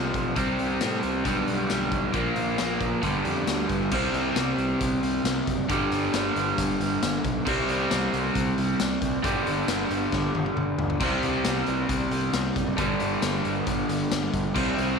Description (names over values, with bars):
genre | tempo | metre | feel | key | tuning
classic rock | 135 BPM | 4/4 | straight | unclear | A4 = 440 Hz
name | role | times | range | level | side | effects
overdriven electric guitar | riff | 0.0-15.0 s | F2 to C4 | -25 LUFS | right 1 dB | none
fuzz picked electric bass | bass | 0.0-14.9 s | F#1 to A2 | -32 LUFS | right 1 dB | overdrive
raw garage drum kit | drums | 0.1-14.9 s | crash cymbal, hi-hat, kick drum, snare drum, tambourine, toms | -30 LUFS | left 4 dB | none
room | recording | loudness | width
moderate echo chamber reverb, RT60 2.2 s | 1960s-style stereo | -23 LUFS | side -5 dB against mid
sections
0.0-3.9 A section; 3.9-15.0 B section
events
drum fill 10.1-11.0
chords
0.4 C5; 1.3 G/B; 2.1 Bb5; 3.0 G5; 3.9 C5; 5.7 G5; 7.5 C5; 9.2 G5; 11.0 C5; 12.8 G5